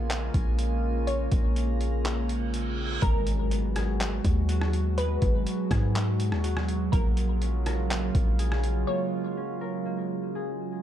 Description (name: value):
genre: hip hop, atmospheric cloud-rap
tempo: 123 BPM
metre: 4/4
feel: half-time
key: unclear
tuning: A4 = 439 Hz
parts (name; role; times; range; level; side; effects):
- glassy wavetable pluck; melody; 0.0-10.8 s; A#4 to C#5; -36 LUFS; left 1 dB; chorus, low-pass filter, ping-pong delay
- warbly tape-like pad; sustained chords; 0.0-10.8 s; B2 to F#4; -32 LUFS; right 3 dB; chorus, built-in reverb, sidechain pumping
- warm 808-style bass; bass; 0.0-8.9 s; G#1 to G#2; -27 LUFS; equal; none
- drifting glass-harmonics texture; texture; 0.0-3.0 s; C#4 to A#5; -41 LUFS; left 2 dB; chorus, built-in reverb
- trip hop sampler-style drum kit; drums; 0.1-8.7 s; handclaps, hi-hat, kick drum, rim click; -29 LUFS; equal; none
- reverse cymbal and impact; sound effects; 2.3-5.0 s; none; -38 LUFS; right 2 dB; none
- concert harp; arpeggios; 3.0-10.8 s; G#3 to A#4; -36 LUFS; left 5 dB; low-pass filter, ping-pong delay
room: little or no reverb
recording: dark, warm production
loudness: -24 LUFS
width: side -11 dB against mid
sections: 0.0-3.0 A section; 3.0-10.8 B section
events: reverse cymbal 2.3-3.0; impact 3.0-5.0; break 8.9-10.8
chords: 0.0 A#m7; 3.0 G#m9; 6.9 A#m7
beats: 0.10 0.59 | 1.07 1.56 2.05 2.54 | 3.03 3.51 4.00 4.49 | 4.98 5.46 5.95 6.44 | 6.93 7.42 7.90 8.39 | 8.88 9.37 9.86 10.34